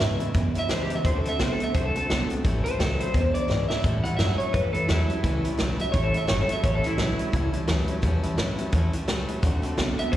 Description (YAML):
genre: rockabilly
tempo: 172 BPM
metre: 4/4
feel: swing 58% on 8ths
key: A mixolydian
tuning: A4 = 436 Hz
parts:
  - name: electric guitar through a small old amp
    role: melody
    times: 0.0-7.5, 10.0-10.2 s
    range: E4 to F#5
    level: -28 LUFS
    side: equal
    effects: slapback echo, analog delay
  - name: picked steel-string acoustic guitar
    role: accompaniment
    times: 0.0-10.2 s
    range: E2 to F#4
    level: -32 LUFS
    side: left 4 dB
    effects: slapback echo
  - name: electric guitar through a small old amp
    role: riff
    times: 0.0-10.2 s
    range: E2 to B3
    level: -31 LUFS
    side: right 3 dB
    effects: slapback echo
  - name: upright bass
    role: bass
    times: 0.0-10.2 s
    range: G1 to A2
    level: -27 LUFS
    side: equal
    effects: none
  - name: vintage drum kit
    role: drums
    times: 0.0-10.2 s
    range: hi-hat, kick drum, snare drum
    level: -28 LUFS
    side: equal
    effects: none
room: little or no reverb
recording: live gig heard through the venue's PA, recital hall reverb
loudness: -22 LUFS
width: side -13 dB against mid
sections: 0.0-3.8 A section; 3.8-10.2 A section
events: drum fill 3.5-3.8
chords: 0.0 E7; 1.0 D7; 2.4 A7; 3.1 E7; 3.8 A7; 9.4 D7